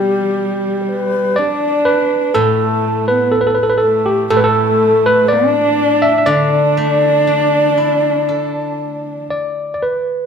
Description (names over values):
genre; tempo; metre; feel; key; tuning
chinese traditional, Chinese chamber ensemble; 61 BPM; 4/4; rubato; D zhi mode; A4 = 440 Hz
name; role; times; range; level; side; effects
barky tine electric piano; melody; 0.0-10.3 s; G4 to E5; -16 LUFS; right 1 dB; none
dark horsehead fiddle; second line; 0.0-9.3 s; G3 to D4; -19 LUFS; right 4 dB; none
mellow xiao; second line; 0.0-9.3 s; G4 to D5; -18 LUFS; left 4 dB; none
steel-string zither; accompaniment; 0.0-10.3 s; A2 to A4; -22 LUFS; equal; none
room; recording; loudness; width
moderate recital hall reverb, RT60 1.4 s; dark, warm production; -12 LUFS; side -7 dB against mid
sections
0.0-10.3 A section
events
none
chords
none